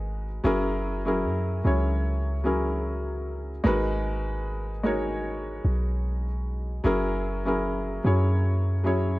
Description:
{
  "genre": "contemporary R&B",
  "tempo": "75 BPM",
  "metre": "4/4",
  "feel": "swing 54% on 16ths",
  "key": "unclear",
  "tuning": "A4 = 441 Hz",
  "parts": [
    { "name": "felt-muted upright piano", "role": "accompaniment", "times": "0.0-9.2 s", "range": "F#3 to C#5", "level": "-27 LUFS", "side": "left 1 dB", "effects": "none" },
    { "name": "warm 808-style bass", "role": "bass", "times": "0.0-9.2 s", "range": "F#1 to F#2", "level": "-27 LUFS", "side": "equal", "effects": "none" }
  ],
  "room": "light reverb, small room ambience",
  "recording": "worn, warbling old tape, cassette tape, warbly pitch drift",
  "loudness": "-24 LUFS",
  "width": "side -19 dB against mid",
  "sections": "0.4-9.2 A section",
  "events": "none",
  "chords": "0.4 F#9; 3.6 G#m9; 6.8 F#9"
}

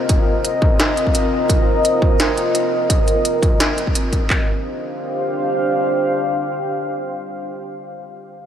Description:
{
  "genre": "half-time drum and bass",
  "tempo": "171 BPM",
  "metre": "4/4",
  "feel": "swing 56% on 16ths, half-time",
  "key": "D phrygian",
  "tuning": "A4 = 440 Hz",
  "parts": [
    { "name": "deep dark ambient pad", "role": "sustained chords", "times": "0.0-7.9 s", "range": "C4 to F5", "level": "-19 LUFS", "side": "equal", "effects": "chorus, built-in reverb, sidechain pumping" },
    { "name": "industrial drum kit", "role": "drums", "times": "0.1-4.4 s", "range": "handclaps, kick drum", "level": "-17 LUFS", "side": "equal", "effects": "distortion, small room ambience" },
    { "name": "industrial drum kit", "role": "drums", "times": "0.1-4.2 s", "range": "hi-hat, snare drum", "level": "-23 LUFS", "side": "right 1 dB", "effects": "small room ambience" }
  ],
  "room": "wet huge ambient reverb, RT60 4.6 s",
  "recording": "dreamy mix soaked in reverb, lossy compression artefacts",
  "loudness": "-16 LUFS",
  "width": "side -9 dB against mid",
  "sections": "0.0-4.3 A section; 4.3-7.1 B section",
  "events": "none",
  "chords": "0.0 Cm; 4.3 Dm7"
}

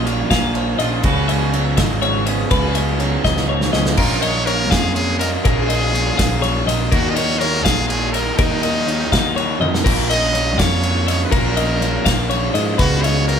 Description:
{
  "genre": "math rock and midwest emo",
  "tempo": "82 BPM (dotted quarters)",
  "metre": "6/8",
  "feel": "straight",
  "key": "unclear",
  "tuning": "A4 = 444 Hz",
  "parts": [
    { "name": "twangy electric guitar", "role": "accompaniment", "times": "0.0-5.5 s", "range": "G#2 to G#4", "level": "-26 LUFS", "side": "right 8 dB", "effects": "none" },
    { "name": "twelve-string electric guitar", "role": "arpeggios", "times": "0.0-13.4 s", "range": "A#4 to E#5", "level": "-22 LUFS", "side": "left 4 dB", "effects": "none" },
    { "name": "crunchy overdriven guitar", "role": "riff", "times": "0.0-13.4 s", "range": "A#2 to F#4", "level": "-23 LUFS", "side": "right 2 dB", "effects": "spring reverb" },
    { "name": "picked electric bass", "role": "bass", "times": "0.0-13.4 s", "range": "G#1 to G#2", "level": "-21 LUFS", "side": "equal", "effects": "none" },
    { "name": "loose indie drum kit", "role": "drums", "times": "0.1-13.4 s", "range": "crash cymbal, kick drum, ride cymbal, snare drum, toms", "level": "-20 LUFS", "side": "equal", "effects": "none" },
    { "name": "brilliant trumpet", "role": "melody", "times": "4.0-13.4 s", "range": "D#4 to D#5", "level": "-22 LUFS", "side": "equal", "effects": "none" }
  ],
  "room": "moderate large studio reverb, RT60 0.8 s",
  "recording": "band playing live in one room",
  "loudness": "-15 LUFS",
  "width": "side -7 dB against mid",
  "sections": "0.0-4.0 A section; 4.0-13.4 B section",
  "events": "drum fill 3.3-4.0, 9.6",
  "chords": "0.0 A#m7; 1.0 C#7sus4; 4.0 A#m7; 6.9 D#m7; 9.9 A#m; 12.8 C#7sus4"
}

